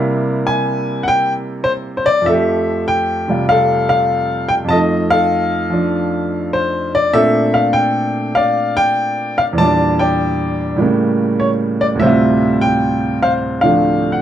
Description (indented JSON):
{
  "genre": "solo jazz",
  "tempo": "99 BPM",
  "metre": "4/4",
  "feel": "swing 68% on 8ths",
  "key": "F major",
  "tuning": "A4 = 441 Hz",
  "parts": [
    { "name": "clear baby grand piano", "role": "solo", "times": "0.0-14.2 s", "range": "D2 to A5", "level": "-13 LUFS", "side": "equal", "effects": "none" }
  ],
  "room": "moderate studio reverb, RT60 0.8 s",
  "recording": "dark, warm production",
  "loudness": "-13 LUFS",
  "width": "side -10 dB against mid",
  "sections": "0.0-2.3 A section; 2.3-14.2 B section",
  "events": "grand piano solo 0.0-2.3",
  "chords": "0.0 C7; 2.3 Fmaj9; 4.7 F7; 7.1 Bbmaj9; 9.6 Em7b5; 10.8 A7b9; 12.0 Dm11"
}